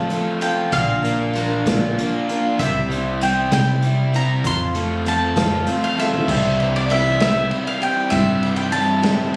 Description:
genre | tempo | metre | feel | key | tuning
folk rock and heartland rock | 65 BPM (dotted quarters) | 6/8 | straight | C major from 6.3 s | A4 = 438 Hz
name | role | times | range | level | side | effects
bowl-back mandolin | melody | 0.0-9.4 s | D5 to C6 | -25 LUFS | equal | none
picked steel-string acoustic guitar | accompaniment | 0.0-9.4 s | Bb2 to C5 | -26 LUFS | equal | none
raw garage guitar | riff | 0.0-9.4 s | F2 to F4 | -26 LUFS | equal | overdrive
hollow-body short-scale fingered electric bass | bass | 0.0-9.3 s | Bb1 to F3 | -25 LUFS | equal | none
unplugged drum kit | drums | 0.1-9.4 s | crash cymbal, hi-hat, kick drum, ride cymbal, snare drum, toms | -28 LUFS | equal | none
room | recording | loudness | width
light reverb | recorded on a phone in the room, studio reverb, compression | -19 LUFS | mono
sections
0.0-6.3 A section; 6.3-9.4 B section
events
drum fill 6.0-6.3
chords
0.0 F; 0.7 Bb; 2.6 C; 4.4 F; 6.3 C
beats
| 0.73 1.66 | 2.59 3.52 | 4.45 5.37 | 6.29 7.21 | 8.12 9.04

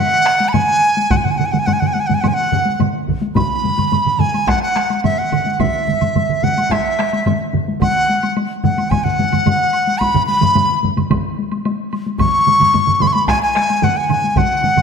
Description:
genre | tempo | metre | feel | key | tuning
japanese traditional, taiko drum ensemble | 108 BPM | 4/4 | straight | F# suspended pentatonic | A4 = 440 Hz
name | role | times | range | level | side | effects
dizi | melody | 0.0-14.8 s | E5 to C#6 | -16 LUFS | equal | none
taiko ensemble | percussion | 0.3-14.8 s | none | -23 LUFS | left 6 dB | none
taiko ensemble | percussion | 0.3-14.8 s | none | -21 LUFS | right 9 dB | none
woodblock | percussion | 0.3-14.8 s | none | -32 LUFS | right 4 dB | none
solo taiko drums | percussion | 0.4-14.8 s | none | -22 LUFS | left 4 dB | none
taiko ensemble | percussion | 1.1-14.5 s | none | -23 LUFS | right 1 dB | none
room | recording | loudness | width
wet scoring stage reverb, RT60 1.6 s | none | -13 LUFS | side -6 dB against mid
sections
0.0-3.4 A section; 3.4-14.8 B section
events
speeding up 0.0-14.8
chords
none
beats
0.54 | 1.11 1.67 2.24 2.80 | 3.36 3.92 4.48 5.04 | 5.60 6.16 6.71 7.26 | 7.82 8.37 8.92 9.47 | 10.02 10.57 11.11 11.66 | 12.20 12.74 13.29 13.83 | 14.37

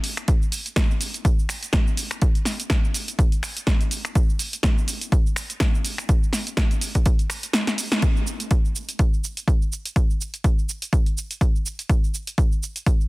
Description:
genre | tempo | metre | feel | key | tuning
house | 124 BPM | 4/4 | swing 56% on 16ths | none | none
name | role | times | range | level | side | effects
punchy analog drum machine | drums | 0.0-13.1 s | finger snaps, hi-hat, shaker, snare drum | -26 LUFS | equal | none
electronic kick drum | drums | 0.3-13.0 s | none | -19 LUFS | equal | none
room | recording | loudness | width
digital ambience | dense, heavily limited modern master | -20 LUFS | side -22 dB against mid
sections
0.0-8.0 A section; 8.0-13.1 B section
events
kick drops out 7.5-8.0; drum fill 7.7-8.0; band accent 7.9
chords
none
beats
| 0.28 0.77 1.25 1.73 | 2.22 2.70 3.18 3.67 | 4.15 4.64 5.12 5.60 | 6.09 6.57 7.05 7.54 | 8.02 8.51 8.99 9.47 | 9.96 10.44 10.93 11.41 | 11.89 12.38 12.86

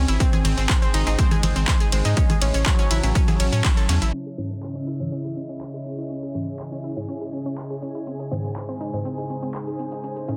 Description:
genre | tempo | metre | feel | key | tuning
melodic techno | 122 BPM | 4/4 | straight | C# harmonic minor | A4 = 439 Hz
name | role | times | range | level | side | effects
analog synth brass | melody | 0.0-4.0 s | F#3 to B#3 | -33 LUFS | equal | chorus, sidechain pumping, delay
dark analog pad | sustained chords | 0.0-10.4 s | G#3 to A5 | -38 LUFS | equal | chorus, phaser, vintage 12-bit sampler grit, sidechain pumping
analog pluck | arpeggios | 0.0-10.3 s | B#3 to C#5 | -34 LUFS | equal | chorus, sidechain pumping, dub echo
round analog bass | bass | 0.0-4.1 s | G#1 to A2 | -23 LUFS | equal | sidechain pumping
bowed-like drone | drone | 1.9-10.4 s | C#3 | -39 LUFS | equal | none
ethereal airy pad | texture | 0.0-10.4 s | D#4 to C#6 | -39 LUFS | equal | ensemble chorus, built-in reverb, phaser, sidechain pumping
dusty soul sampler-style drum kit | drums | 0.1-10.4 s | hi-hat, snare drum | -41 LUFS | equal | none
techno drum kit | drums | 0.1-10.4 s | congas, handclaps, hi-hat, ride cymbal | -29 LUFS | equal | overdrive
electronic kick drum | drums | 0.2-3.7 s | none | -22 LUFS | equal | overdrive
filtered dub chord stab | stabs | 0.4-10.4 s | G#2 to C#4 | -35 LUFS | equal | phaser, sidechain pumping, dub echo
room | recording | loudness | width
light reverb | dense, heavily limited modern master, low-pass filter | -23 LUFS | mono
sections
0.0-4.1 A section; 4.1-10.4 B section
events
drop 0.0-4.1; band accent 3.6; filter sweep 4.1-10.4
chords
0.2 G#; 2.2 A; 4.1 C#m; 8.1 G#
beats
| 0.20 0.69 1.19 1.68 | 2.17 2.66 3.15 3.64 | 4.14 4.63 5.12 5.61 | 6.10 6.59 7.09 7.58 | 8.07 8.56 9.05 9.55 | 10.04

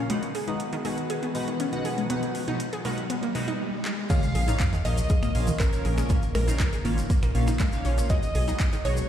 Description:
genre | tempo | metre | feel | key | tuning
progressive house | 120 BPM | 4/4 | straight | unclear | A4 = 440 Hz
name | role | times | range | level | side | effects
airy breathy pad | sustained chords | 0.0-9.1 s | C#3 to B4 | -35 LUFS | left 1 dB | chorus, sidechain pumping
chorused polysynth | stabs | 0.0-9.0 s | A#2 to F#5 | -32 LUFS | left 1 dB | phaser, sidechain pumping, dub echo
riser and sub drop | sound effects | 0.3-6.1 s | none | -34 LUFS | right 1 dB | none
analog pluck | arpeggios | 0.1-8.9 s | D#3 to G#4 | -32 LUFS | equal | chorus, sidechain pumping, dub echo
deep house drum kit | drums | 0.1-9.1 s | crash cymbal, finger snaps, handclaps, hi-hat | -37 LUFS | equal | overdrive
wide unison pluck | melody | 4.1-9.1 s | A#4 to E#5 | -36 LUFS | right 1 dB | sidechain pumping, dub echo
warm studio violin section | second line | 4.1-9.1 s | A#4 to E#5 | -36 LUFS | right 1 dB | sidechain pumping, dub echo
electronic kick drum | drums | 4.1-8.7 s | none | -24 LUFS | equal | overdrive
tube shaker | percussion | 4.1-9.1 s | none | -42 LUFS | left 2 dB | none
dark detuned saw bass | bass | 4.3-9.0 s | G#1 to B1 | -25 LUFS | equal | sidechain pumping
room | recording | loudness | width
light reverb | played on a big sound system in a bare room, large studio reverb | -23 LUFS | side -10 dB against mid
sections
0.0-4.1 A section; 4.1-9.1 B section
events
build-up 0.0-4.1; filter sweep on analog polysynth 0.0-4.1; riser 0.3-4.1; drum fill 3.8; drop 4.1-9.1; impact 4.1-6.1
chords
0.1 G#m7/B; 4.1 A#m; 8.1 G#m7/B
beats
| 0.10 0.60 1.10 1.60 | 2.10 2.60 3.10 3.60 | 4.10 4.60 5.10 5.60 | 6.10 6.60 7.10 7.60 | 8.10 8.60

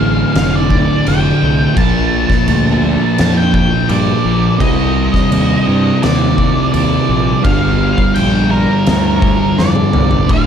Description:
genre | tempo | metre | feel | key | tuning
stoner and doom metal | 84 BPM | 4/4 | straight | unclear | A4 = 440 Hz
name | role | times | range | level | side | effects
octave-fuzz lead guitar | melody | 0.0-10.5 s | Bb4 to A5 | -19 LUFS | equal | distortion, tape echo
thick fuzz guitar | riff | 0.0-10.5 s | D2 to C4 | -18 LUFS | left 11 dB | distortion
thick fuzz guitar | riff | 0.0-10.5 s | D2 to C4 | -16 LUFS | right 7 dB | distortion
fuzz fingered electric bass | bass | 0.0-10.5 s | D1 to G2 | -18 LUFS | equal | overdrive
oversized low-tuned drum kit | drums | 0.4-10.5 s | crash cymbal, kick drum, snare drum, toms | -17 LUFS | equal | none
room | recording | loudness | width
little or no reverb | dark, warm production | -10 LUFS | side -8 dB against mid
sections
0.0-10.5 A section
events
drum fill 9.6-10.3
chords
0.0 Dm; 1.8 Bb; 4.6 Cm; 7.4 Gm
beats
0.35 1.06 | 1.76 2.47 3.18 3.89 | 4.60 5.31 6.02 6.73 | 7.44 8.15 8.87 9.58 | 10.29

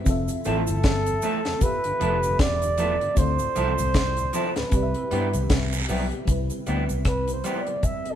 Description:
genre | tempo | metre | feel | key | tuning
lovers rock reggae | 77 BPM | 4/4 | swing 58% on 16ths | C major | A4 = 440 Hz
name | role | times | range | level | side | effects
FM electric piano with soft pad layer | accompaniment | 0.0-8.2 s | G3 to E5 | -32 LUFS | left 1 dB | chorus
vintage muted fingered electric bass | bass | 0.0-7.4 s | E1 to G2 | -27 LUFS | left 1 dB | none
deep reggae drum kit | drums | 0.1-8.2 s | hi-hat, kick drum, rim click, snare drum | -24 LUFS | equal | none
cabasa and guiro | percussion | 0.1-8.0 s | none | -38 LUFS | right 6 dB | none
mellow tonewheel organ | accompaniment | 0.3-8.1 s | D2 to E4 | -36 LUFS | left 2 dB | none
breathy flugelhorn | melody | 0.5-8.2 s | A4 to E5 | -26 LUFS | right 2 dB | none
electric guitar through a small old amp | stabs | 0.5-7.7 s | F3 to A4 | -29 LUFS | right 2 dB | none
room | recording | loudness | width
moderate stone room reverb, RT60 1.1 s | band playing live in one room | -21 LUFS | side -10 dB against mid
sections
0.0-6.3 A section; 6.3-8.2 B section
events
flugelhorn solo 6.3-8.2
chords
0.1 Fmaj7; 1.6 G13; 3.2 Dm9; 4.7 Cmaj7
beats
| 0.06 0.84 1.62 2.39 | 3.17 3.94 4.72 5.50 | 6.28 7.05 7.83

